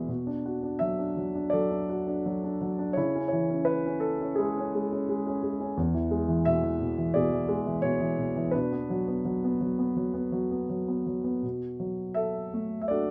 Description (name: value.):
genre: classical, lyrical solo piano.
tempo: 85 BPM.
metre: 4/4.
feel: uneven beats, rubato.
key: B dorian.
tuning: A4 = 440 Hz.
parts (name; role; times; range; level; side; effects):
warm concert grand piano; solo; 0.0-13.1 s; E2 to E5; -29 LUFS; equal; none.
room: moderate small room reverb, RT60 0.6 s.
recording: none.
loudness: -29 LUFS.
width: mono.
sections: 0.0-11.4 A section; 11.4-13.1 A section.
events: none.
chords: 0.1 Bm7; 3.0 C#m; 5.8 E; 8.5 Bm; 11.4 Bm7.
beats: | 0.09 0.81 1.53 2.25 | 2.97 3.68 4.39 5.08 | 5.77 6.46 7.14 7.83 | 8.53 9.24 9.95 10.69 | 11.44 12.17 12.90.